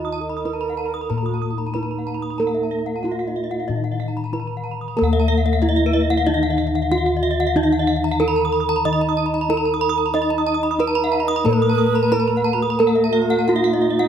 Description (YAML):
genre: Balinese gamelan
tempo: 93 BPM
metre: 4/4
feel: straight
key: Eb pelog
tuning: A4 = 440 Hz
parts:
  - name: gamelan-type bronze metallophone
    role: melody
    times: 0.0-14.1 s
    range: Eb4 to Eb5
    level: -22 LUFS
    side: right 1 dB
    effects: none
  - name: bright xiao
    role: second line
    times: 0.0-4.2, 11.0-14.1 s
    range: Eb4 to Fb5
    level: -26 LUFS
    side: right 6 dB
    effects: none
  - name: gamelan-type bronze metallophone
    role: accompaniment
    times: 0.0-14.1 s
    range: Eb3 to Eb4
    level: -26 LUFS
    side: left 2 dB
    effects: none
  - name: gamelan-type bronze metallophone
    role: arpeggios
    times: 0.0-14.1 s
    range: Cb5-40c to Eb6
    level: -28 LUFS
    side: left 4 dB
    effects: none
  - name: gamelan-type bronze metallophone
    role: arpeggios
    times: 0.0-14.0 s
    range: Eb5 to Eb6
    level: -26 LUFS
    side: right 6 dB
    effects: none
  - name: gamelan-type bossed gongs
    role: bass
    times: 0.0-14.1 s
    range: Eb2 to Eb5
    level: -24 LUFS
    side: left 2 dB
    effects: none
room: moderate recital hall reverb, RT60 1.4 s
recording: close, detailed microphones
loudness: -17 LUFS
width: side -9 dB against mid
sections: 0.0-5.0 A section; 5.0-14.1 A section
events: none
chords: none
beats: 0.45 1.10 1.74 | 2.39 3.03 3.68 4.33 | 4.97 5.62 6.26 6.91 | 7.55 8.20 8.84 9.49 | 10.13 10.78 11.44 12.11 | 12.79 13.47